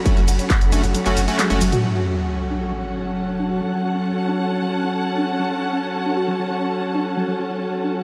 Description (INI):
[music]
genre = driving peak-time techno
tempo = 135 BPM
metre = 4/4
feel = straight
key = F# minor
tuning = A4 = 440 Hz
[part]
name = metallic inharmonic drone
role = drone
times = 0.0-8.0 s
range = F#3 to F#4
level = -27 LUFS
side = equal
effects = chorus, built-in reverb, sidechain pumping
[part]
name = warm studio string section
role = texture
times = 0.0-8.0 s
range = C#4 to B5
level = -29 LUFS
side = equal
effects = sidechain pumping
[part]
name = overdriven synth lead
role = riff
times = 0.1-8.0 s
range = F#3 to F#4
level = -29 LUFS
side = equal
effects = ensemble chorus, sidechain pumping, analog delay
[part]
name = sync-sweep polysynth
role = stabs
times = 0.1-1.6 s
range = A3 to F#4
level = -30 LUFS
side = equal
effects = chorus, sidechain pumping, delay
[part]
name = electronic kick drum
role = drums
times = 0.1-0.6 s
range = none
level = -20 LUFS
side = equal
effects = distortion
[part]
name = techno drum kit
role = drums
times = 0.1-1.8 s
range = handclaps, hi-hat, ride cymbal, shaker, toms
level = -28 LUFS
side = equal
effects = sidechain pumping on hats, sidechain pumping on cymbals, sidechain pumping on perc, sidechain pumping on toms
[part]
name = saturated sub bass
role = bass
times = 0.2-1.7 s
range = F#1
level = -26 LUFS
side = equal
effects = overdrive, sidechain pumping, low-pass filter
[part]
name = sub drop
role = sound effects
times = 1.8-3.6 s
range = none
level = -30 LUFS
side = equal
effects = none
[sound]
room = wet huge ambient reverb, RT60 7.3 s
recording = dreamy mix soaked in reverb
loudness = -21 LUFS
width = mono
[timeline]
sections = 0.0-1.8 A section; 1.8-8.0 B section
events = drop 0.0-1.8; kick drops out 0.9-1.8; drum fill 1.4-1.8; impact 1.8-3.6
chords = 0.0 F#m